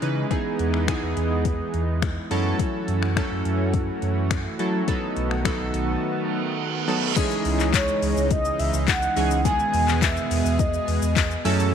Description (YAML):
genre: dance-pop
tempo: 105 BPM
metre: 4/4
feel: straight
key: unclear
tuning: A4 = 440 Hz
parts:
  - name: chorused retro synth keys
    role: accompaniment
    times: 0.0-11.7 s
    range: D#3 to B4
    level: -26 LUFS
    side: right 1 dB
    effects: sidechain pumping
  - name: lush unison pad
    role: sustained chords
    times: 0.0-11.7 s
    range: B2 to G#4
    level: -28 LUFS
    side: right 1 dB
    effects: chorus, sidechain pumping
  - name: sub bass with octave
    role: bass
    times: 0.0-11.7 s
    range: B1 to F#3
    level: -26 LUFS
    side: right 1 dB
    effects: sidechain pumping
  - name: smooth R&B drum kit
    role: drums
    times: 0.0-11.7 s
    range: crash cymbal, finger snaps, handclaps, hi-hat, kick drum, shaker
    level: -25 LUFS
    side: left 4 dB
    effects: none
  - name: reverse cymbal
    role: sound effects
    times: 6.2-7.2 s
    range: none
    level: -29 LUFS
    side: right 12 dB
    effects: none
  - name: mellow horn-like synth lead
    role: melody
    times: 7.7-11.5 s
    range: C#5 to G#5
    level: -25 LUFS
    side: equal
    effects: chorus, slapback echo
  - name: tambourine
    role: percussion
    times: 7.7-11.3 s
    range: none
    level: -39 LUFS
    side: right 18 dB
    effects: none
room: light reverb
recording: 1960s-style stereo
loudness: -21 LUFS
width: side -8 dB against mid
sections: 0.0-7.2 A section; 7.2-11.7 B section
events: reverse cymbal 6.2-7.2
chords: 0.3 Emaj7; 2.3 F#m7; 4.9 B7; 7.2 C#madd9; 9.5 Emaj7